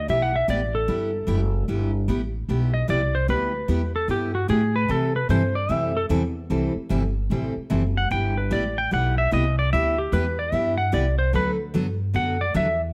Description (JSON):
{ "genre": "country, western swing", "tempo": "149 BPM", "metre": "4/4", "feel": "swing 64% on 8ths", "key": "G major", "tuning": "A4 = 440 Hz", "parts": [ { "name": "clean lap steel guitar", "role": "melody", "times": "0.0-12.8 s", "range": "F#4 to G5", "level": "-27 LUFS", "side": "equal", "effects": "plate reverb" }, { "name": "upright bass", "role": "bass", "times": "0.0-12.9 s", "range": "F#1 to C3", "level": "-27 LUFS", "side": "equal", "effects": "none" }, { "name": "picked steel-string acoustic guitar", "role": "accompaniment", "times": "0.1-12.7 s", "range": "C3 to A4", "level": "-29 LUFS", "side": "equal", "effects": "none" } ], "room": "moderate studio reverb, RT60 0.8 s", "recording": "none", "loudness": "-23 LUFS", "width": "mono", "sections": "0.0-12.9 A section", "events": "electric slide guitar solo 0.0-12.9", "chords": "0.0 G6; 4.9 C6; 8.1 G6; 11.3 D6" }